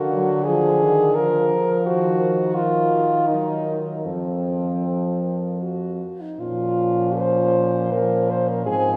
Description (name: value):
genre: classical, lyrical piece for horn quartet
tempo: 74-88 BPM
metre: 3/4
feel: rubato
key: Bb minor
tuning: A4 = 443 Hz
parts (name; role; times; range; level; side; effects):
- mellow French horn; melody; 0.0-9.0 s; Eb4 to C5; -27 LUFS; equal; none
- warm French horn; second line; 0.0-9.0 s; C4 to Bb4; -24 LUFS; equal; none
- mellow French horn; accompaniment; 0.0-9.0 s; D3 to Gb3; -28 LUFS; equal; none
- mellow French horn; bass; 0.0-9.0 s; F2 to Eb3; -29 LUFS; equal; none
room: wet church reverb, RT60 2.6 s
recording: heard from further back in the room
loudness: -21 LUFS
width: mono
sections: 0.0-6.4 A section; 6.4-9.0 B section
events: none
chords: 0.0 Bb7/D; 1.9 Ebm; 4.1 F; 6.4 Bbm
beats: 0.48 1.17 | 1.86 2.57 3.30 | 4.06 4.84 5.62 | 6.40 7.18 7.93 | 8.66